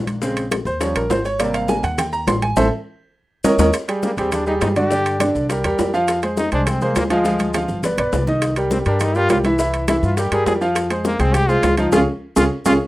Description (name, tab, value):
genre	latin, salsa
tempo	205 BPM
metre	4/4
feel	straight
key	unclear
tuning	A4 = 440 Hz
part	bright concert grand piano	accompaniment	0.0-12.8 s	C3 to C6	-19 LUFS	right 1 dB	none
part	upright bass	bass	0.0-12.8 s	G1 to G2	-23 LUFS	equal	none
part	bongos	percussion	0.1-12.7 s	none	-26 LUFS	left 6 dB	none
part	congas	percussion	0.1-12.7 s	none	-26 LUFS	left 1 dB	none
part	maracas	percussion	0.1-12.7 s	none	-35 LUFS	left 4 dB	none
part	timbales	percussion	0.1-12.7 s	none	-24 LUFS	right 4 dB	none
part	brilliant trombone	melody	4.0-12.7 s	Ab3 to Ab4	-22 LUFS	left 1 dB	none
room	little or no reverb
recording	rough home demo mix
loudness	-16 LUFS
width	side -17 dB against mid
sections	0.0-3.7 A section; 3.7-12.9 B section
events	grand piano solo 0.0-3.7; band accent 2.6-3.7, 11.9-12.9; drum fill 3.0-3.7, 7.3-8.4, 12.2-12.9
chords	0.2 Bbm7; 0.8 Eb7; 1.4 Abmaj7; 2.6 Am; 3.2 Eb5; 3.7 Ab5; 4.9 G5; 5.5 C7; 6.1 Fm; 7.3 Ddim; 7.8 G; 8.4 Cm7; 9.6 C7; 10.8 Fm; 11.9 Db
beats	| 0.22 0.51 0.81 1.10 | 1.40 1.69 1.98 2.27 | 2.57 2.86 3.15 3.45 | 3.74 4.03 4.33 4.62 | 4.91 5.21 5.50 5.79 | 6.08 6.38 6.67 6.96 | 7.25 7.54 7.84 8.13 | 8.42 8.71 9.01 9.30 | 9.59 9.88 10.18 10.47 | 10.76 11.05 11.34 11.63 | 11.93 12.22 12.51